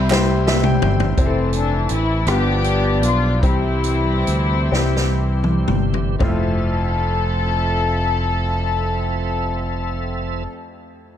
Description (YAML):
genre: slow gospel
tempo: 37-56 BPM (dotted quarters)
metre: 6/8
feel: straight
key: F major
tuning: A4 = 437 Hz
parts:
  - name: warm studio string section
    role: melody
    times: 0.0-10.5 s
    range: E3 to A4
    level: -23 LUFS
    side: left 3 dB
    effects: none
  - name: bright baby grand piano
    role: accompaniment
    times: 0.0-11.2 s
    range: F2 to G5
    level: -25 LUFS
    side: left 4 dB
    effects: none
  - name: tonewheel organ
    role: sustained chords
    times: 0.0-10.4 s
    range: E3 to E5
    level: -28 LUFS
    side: right 3 dB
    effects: fast rotary speaker, chorus vibrato
  - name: fingered electric bass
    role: bass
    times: 0.0-10.5 s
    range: F1 to D2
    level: -20 LUFS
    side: equal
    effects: none
  - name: swinging big-band drum kit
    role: drums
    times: 0.1-6.5 s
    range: hi-hat, kick drum, rim click, snare drum, toms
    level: -22 LUFS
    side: equal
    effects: none
room: small room ambience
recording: dark, warm production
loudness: -17 LUFS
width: side -10 dB against mid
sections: 0.0-1.2 A section; 1.2-6.2 B section; 6.2-11.2 C section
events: drum fill 0.1-1.2, 4.7-6.2; grand piano fill 0.1-1.2; slowing down 1.2-6.2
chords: 0.0 C; 1.2 Fmaj7; 2.3 G7; 3.4 C; 6.2 Fmaj7